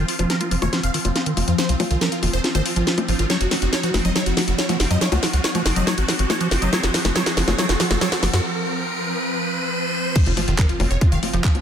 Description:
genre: psychedelic trance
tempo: 140 BPM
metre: 4/4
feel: straight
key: unclear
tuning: A4 = 437 Hz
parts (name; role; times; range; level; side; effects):
- supersaw stab; melody; 0.0-11.5 s; F4 to F5; -26 LUFS; right 1 dB; phaser, sidechain pumping, digital delay
- swarming drone; sustained chords; 0.0-11.6 s; F3 to C4; -27 LUFS; right 1 dB; built-in reverb, sidechain pumping
- liquid acid bass; riff; 0.0-11.6 s; Eb3 to F4; -26 LUFS; moving between left 3 dB and right 4 dB; chorus, auto-pan, sidechain pumping, digital delay
- tight sequencer bass; bass; 0.0-11.4 s; F1 to Gb2; -22 LUFS; equal; none
- riser and impact; sound effects; 0.1-11.6 s; none; -29 LUFS; equal; none
- garage drum kit; drums; 0.1-11.6 s; bongos, crash cymbal, handclaps, hi-hat, snare drum; -23 LUFS; left 2 dB; none
- vowel-sweep wobble bass; second line; 3.9-8.2, 10.8-11.2 s; Ab3 to C4; -37 LUFS; right 3 dB; none
- electronic kick drum; drums; 10.2-11.5 s; none; -16 LUFS; equal; none
room: light reverb, digital ambience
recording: none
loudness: -18 LUFS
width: side -8 dB against mid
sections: 0.0-10.2 A section; 10.2-11.6 B section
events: build-up 0.0-10.2; drum fill 0.0-8.4; filter sweep on acid bass 0.0-10.2; riser 0.1-10.2; break 8.4-10.2; drop 10.2-11.6; impact 10.2-11.6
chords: 0.0 F5; 3.3 Gb5; 10.2 F5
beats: 0.30 0.73 1.16 | 1.58 2.01 2.44 2.87 | 3.30 3.73 4.16 4.58 | 5.01 5.44 5.87 6.30 | 6.73 7.16 7.58 8.01 | 8.44 8.87 9.30 9.73 | 10.16 10.59 11.01 11.44

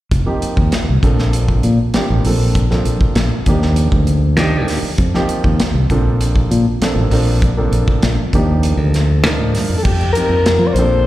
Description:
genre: electric jazz fusion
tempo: 99 BPM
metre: 4/4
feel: straight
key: F mixolydian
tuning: A4 = 440 Hz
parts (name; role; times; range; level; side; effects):
- modern bright fingered electric bass; bass; 0.1-11.1 s; F1 to F3; -15 LUFS; equal; none
- modern studio drum kit; drums; 0.1-10.9 s; crash cymbal, hi-hat, kick drum, snare drum; -18 LUFS; equal; none
- dark grand piano; accompaniment; 0.3-11.1 s; F3 to Bb4; -20 LUFS; right 2 dB; slapback echo
- breathy soprano saxophone; melody; 9.8-11.1 s; G4 to D5; -16 LUFS; left 3 dB; slapback echo
room: small room reverb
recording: live gig heard through the venue's PA, recital hall reverb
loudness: -12 LUFS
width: side -15 dB against mid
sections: 0.1-9.9 A section; 9.9-11.1 B section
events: none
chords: 0.1 F9sus4; 1.0 Bbmaj9; 3.5 Ebmaj7; 5.0 F9sus4; 5.9 Bbmaj9; 8.3 Ebmaj7; 9.9 F9sus4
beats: | 0.12 0.73 1.33 1.94 | 2.55 3.16 3.77 4.38 | 4.98 5.59 6.20 6.81 | 7.42 8.03 8.63 9.24 | 9.85 10.46

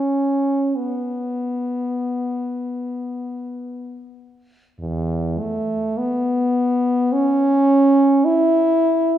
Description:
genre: classical, free, expressive piece for unaccompanied French horn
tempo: free time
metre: none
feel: none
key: unclear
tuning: A4 = 440 Hz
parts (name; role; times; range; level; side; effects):
- mellow French horn; solo; 0.0-9.2 s; E2 to E4; -18 LUFS; equal; none
room: wet recital hall reverb, RT60 1.5 s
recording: heard from further back in the room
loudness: -17 LUFS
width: side -11 dB against mid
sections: 0.0-4.8 A section; 4.8-9.2 B section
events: none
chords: none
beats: free time

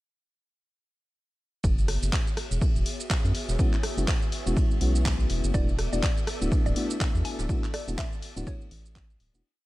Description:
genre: deep house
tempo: 123 BPM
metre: 4/4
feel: swing 58% on 16ths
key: F# minor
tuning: A4 = 440 Hz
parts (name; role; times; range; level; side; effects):
- warm analog pad; sustained chords; 1.6-9.4 s; B3 to E5; -39 LUFS; equal; chorus, sidechain pumping
- round analog bass; bass; 1.6-9.4 s; D1 to F#2; -27 LUFS; equal; none
- deep house drum kit; drums; 1.6-9.4 s; handclaps, hi-hat, rim click, shaker; -34 LUFS; equal; overdrive, vintage 12-bit sampler grit
- electronic kick drum; drums; 1.6-9.1 s; none; -26 LUFS; equal; vintage 12-bit sampler grit
- jazz brush drum kit; drums; 1.6-9.3 s; ride cymbal, snare drum; -43 LUFS; left 2 dB; high-pass filter on cymbals, vintage 12-bit sampler grit, high-pass filter on snare, high-pass filter on room
- mellow FM electric piano; stabs; 3.6-9.4 s; G#3 to F#4; -33 LUFS; left 2 dB; chorus, sidechain pumping
- mallet-like synth pluck; melody; 5.5-8.6 s; C#5 to G#5; -39 LUFS; left 3 dB; chorus, phaser, tape echo
room: little or no reverb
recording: none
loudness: -24 LUFS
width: side -18 dB against mid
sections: 1.6-9.4 groove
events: fade-out 6.8-9.4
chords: 1.6 F#9sus4; 5.5 E9sus4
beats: | 1.64 2.13 2.62 3.10 | 3.59 4.08 4.57 5.05 | 5.54 6.03 6.52 7.01 | 7.49 7.98 8.47 8.96

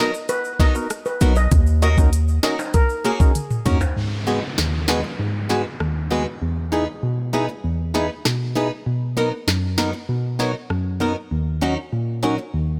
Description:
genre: dancehall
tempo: 98 BPM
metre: 4/4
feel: straight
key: G# minor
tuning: A4 = 438 Hz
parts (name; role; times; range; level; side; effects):
- steel pan; melody; 0.0-3.2 s; G#4 to D#5; -28 LUFS; equal; tape echo
- percussive organ stab; accompaniment; 0.0-12.8 s; D#2 to C#5; -25 LUFS; equal; chorus
- picked steel-string acoustic guitar; arpeggios; 0.0-12.4 s; F#3 to B4; -29 LUFS; equal; none
- tube shaker and timbales; percussion; 0.1-4.0 s; none; -37 LUFS; equal; none
- afro-pop drum kit; drums; 0.3-10.8 s; hi-hat, kick drum, rim click, snare drum, toms; -22 LUFS; equal; none
- hard-hitting 808-style bass; bass; 1.2-3.8 s; B1 to D#2; -19 LUFS; equal; none
- downlifter; sound effects; 4.0-8.9 s; none; -36 LUFS; equal; none
room: little or no reverb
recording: none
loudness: -21 LUFS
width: mono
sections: 0.0-4.0 A section; 4.0-12.8 B section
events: drum fill 3.4-4.0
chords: 0.0 Bmaj7; 1.5 D#m7; 4.0 G#m7; 6.4 Emaj7; 8.9 Bmaj7; 11.3 D#m7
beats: 0.29 0.90 | 1.52 2.13 2.74 3.35 | 3.96 4.58 5.19 5.80 | 6.41 7.03 7.64 8.25 | 8.86 9.47 10.09 10.70 | 11.31 11.92 12.54

